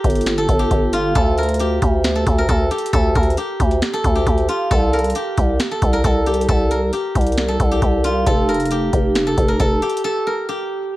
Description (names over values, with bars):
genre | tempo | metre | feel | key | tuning
hip hop, trap | 135 BPM | 4/4 | half-time | unclear | A4 = 438 Hz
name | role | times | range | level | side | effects
steel-string zither | melody | 0.0-11.0 s | F4 to Bb4 | -20 LUFS | right 1 dB | cassette tape
growling 808-style bass | bass | 0.0-9.8 s | F1 to D2 | -18 LUFS | equal | none
booming analog drum machine | drums | 0.0-10.0 s | finger snaps, hi-hat, kick drum, snare drum | -20 LUFS | equal | cassette tape
room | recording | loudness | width
digital ambience | home recording on cassette | -15 LUFS | side -17 dB against mid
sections
0.0-11.0 A section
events
break 10.0-11.0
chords
0.0 Gmadd9; 1.2 Dmadd11; 4.7 C5; 8.3 Fadd9